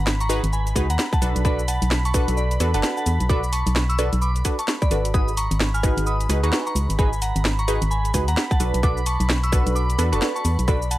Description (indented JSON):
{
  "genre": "UK garage, two-step garage",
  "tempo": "130 BPM",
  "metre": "4/4",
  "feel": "swing 61% on 16ths",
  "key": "unclear",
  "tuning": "A4 = 440 Hz",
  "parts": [
    { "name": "soft synth bell", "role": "melody", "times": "0.0-11.0 s", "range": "D5 to E#6", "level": "-28 LUFS", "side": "equal", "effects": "chorus, vintage 12-bit sampler grit" },
    { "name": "warm analog pad", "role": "sustained chords", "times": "0.0-11.0 s", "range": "B5", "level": "-33 LUFS", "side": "right 2 dB", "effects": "chorus, sidechain pumping" },
    { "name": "organ-like FM bass", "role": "bass", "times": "0.0-11.0 s", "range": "F#1 to E2", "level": "-22 LUFS", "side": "equal", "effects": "none" },
    { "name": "garage drum kit", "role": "drums", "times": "0.1-11.0 s", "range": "cabasa, hi-hat, rim click, snare drum", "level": "-26 LUFS", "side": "equal", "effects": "none" },
    { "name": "punchy chord stab", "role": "stabs", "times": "0.3-10.8 s", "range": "D4 to B4", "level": "-27 LUFS", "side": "right 1 dB", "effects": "chorus, dub echo" },
    { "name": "electronic kick drum", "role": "drums", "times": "0.8-10.8 s", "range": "none", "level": "-21 LUFS", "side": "equal", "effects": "none" }
  ],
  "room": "little or no reverb",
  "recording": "vinyl crackle",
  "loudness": "-19 LUFS",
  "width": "side -16 dB against mid",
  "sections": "0.0-11.0 A section",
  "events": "none",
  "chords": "0.0 G#m7; 1.2 Bm7; 5.1 G#m7; 8.6 Bm7",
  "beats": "0.06 0.53 0.99 | 1.45 1.91 2.37 2.83 | 3.29 3.76 4.22 4.68 | 5.14 5.60 6.06 6.53 | 6.99 7.45 7.91 8.37 | 8.83 9.29 9.76 10.22 | 10.68"
}